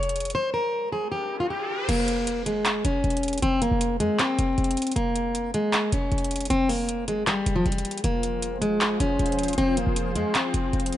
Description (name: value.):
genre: hip hop, trap.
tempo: 156 BPM.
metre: 4/4.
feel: half-time.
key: F harmonic minor.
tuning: A4 = 444 Hz.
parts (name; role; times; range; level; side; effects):
fingerpicked plugged-in steel-string acoustic guitar; melody; 0.0-11.0 s; F3 to Db5; -24 LUFS; left 1 dB; tape echo.
short 808-style bass; bass; 0.0-10.9 s; E1 to F2; -28 LUFS; equal; none.
trap drum kit; drums; 0.0-11.0 s; crash cymbal, handclaps, hi-hat, rim click; -29 LUFS; equal; none.
riser; sound effects; 0.9-1.9 s; none; -34 LUFS; equal; none.
warm analog pad; sustained chords; 8.0-11.0 s; F3 to C5; -32 LUFS; equal; chorus.
room: light reverb, digital ambience.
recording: vinyl crackle, nothing above 11.0 kHz.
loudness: -22 LUFS.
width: side -12 dB against mid.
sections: 0.0-1.9 A section; 1.9-11.0 B section.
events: riser 0.9-1.9.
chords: 0.3 N.C.; 1.9 F5; 5.0 Bb5/F; 8.0 Fm.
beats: | 0.35 0.73 1.12 1.50 | 1.89 2.27 2.66 3.04 | 3.42 3.81 4.19 4.58 | 4.96 5.35 5.73 6.12 | 6.50 6.89 7.27 7.66 | 8.04 8.43 8.81 9.19 | 9.58 9.96 10.35 10.73.